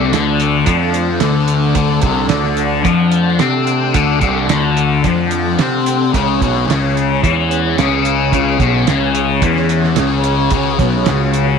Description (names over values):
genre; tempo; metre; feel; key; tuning
psychedelic rock; 110 BPM; 4/4; straight; D lydian; A4 = 437 Hz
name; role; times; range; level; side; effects
ensemble organ-string; sustained chords; 0.0-11.6 s; G#3 to F#5; -22 LUFS; right 13 dB; ensemble chorus
thick fuzz guitar; riff; 0.0-11.6 s; B2 to C4; -15 LUFS; left 9 dB; distortion, phaser
fuzz picked electric bass; bass; 0.0-11.6 s; B1 to C3; -18 LUFS; right 2 dB; overdrive
cloth-damped thuddy drum kit; drums; 0.1-11.5 s; hi-hat, kick drum, snare drum; -19 LUFS; right 6 dB; none
room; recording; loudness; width
light reverb, small room ambience; 1960s-style stereo with parts hard left and right; -12 LUFS; side -6 dB against mid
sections
0.0-11.6 A section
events
none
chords
0.0 D; 6.1 C#5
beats
0.14 0.69 1.23 | 1.78 2.32 2.87 3.41 | 3.96 4.50 5.05 5.60 | 6.14 6.69 7.24 7.79 | 8.33 8.88 9.43 9.98 | 10.53 11.08